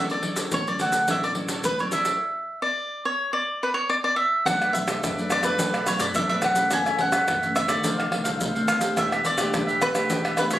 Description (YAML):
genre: samba and choro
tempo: 106 BPM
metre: 4/4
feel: straight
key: D major, B minor from 4.5 s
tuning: A4 = 444 Hz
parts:
  - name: cavaquinho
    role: melody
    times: 0.0-10.6 s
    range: B4 to G#5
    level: -24 LUFS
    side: equal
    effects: none
  - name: cavaquinho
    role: accompaniment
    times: 0.0-10.6 s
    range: D4 to F5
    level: -30 LUFS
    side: right 2 dB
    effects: none
  - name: nylon-string guitar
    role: accompaniment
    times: 0.0-10.6 s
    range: F2 to G4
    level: -30 LUFS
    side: equal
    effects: none
  - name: upright bass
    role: bass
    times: 0.0-10.6 s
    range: E1 to F#2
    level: -37 LUFS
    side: right 1 dB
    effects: none
  - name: egg shaker, pandeiro, surdo and tamborim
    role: percussion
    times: 0.1-10.6 s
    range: none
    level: -27 LUFS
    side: equal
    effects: none
room: moderate studio reverb, RT60 0.8 s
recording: recorded on a phone in the room, studio ambience, compression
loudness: -21 LUFS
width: side -13 dB against mid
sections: 0.0-4.5 A section; 4.5-10.6 B section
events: none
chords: 0.0 Dmaj9; 4.5 Bm7; 6.7 F#m7; 7.9 F13; 9.0 Em7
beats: 0.52 1.08 1.65 | 2.21 2.78 3.34 3.91 | 4.47 5.03 5.60 6.16 | 6.72 7.29 7.85 8.41 | 8.98 9.54 10.11